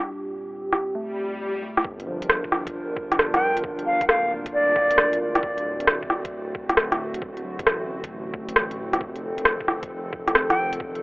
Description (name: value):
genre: future garage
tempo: 134 BPM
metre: 4/4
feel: swing 67% on 16ths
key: G minor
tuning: A4 = 440 Hz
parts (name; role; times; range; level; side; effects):
- tine electric piano; accompaniment; 0.0-11.0 s; F3 to C4; -40 LUFS; equal; sidechain pumping, analog delay
- warbly tape-like pad; sustained chords; 0.0-11.0 s; Eb2 to Bb4; -30 LUFS; equal; chorus, built-in reverb, sidechain pumping
- organic electronic drum kit; drums; 0.7-11.0 s; hi-hat, rim click; -20 LUFS; equal; none
- swell; sound effects; 1.1-1.8 s; none; -31 LUFS; left 2 dB; none
- dark detuned saw bass; bass; 1.8-11.0 s; D1 to A1; -36 LUFS; equal; sidechain pumping
- electronic kick drum; drums; 1.8-10.9 s; none; -36 LUFS; equal; none
- bright baroque flute; melody; 3.3-5.2, 10.5-10.7 s; D5 to G5; -23 LUFS; equal; analog delay
room: light reverb, digital ambience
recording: dry, gritty hardware recording, telephone sound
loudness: -21 LUFS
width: side -25 dB against mid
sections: 0.0-1.8 A section; 1.8-11.0 B section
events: filter sweep on ambient pad 0.0-1.8; filter sweep on tine electric piano 0.0-1.8; swell 1.1-1.8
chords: 0.0 Eb; 1.8 Gm7; 5.4 D7; 9.0 F7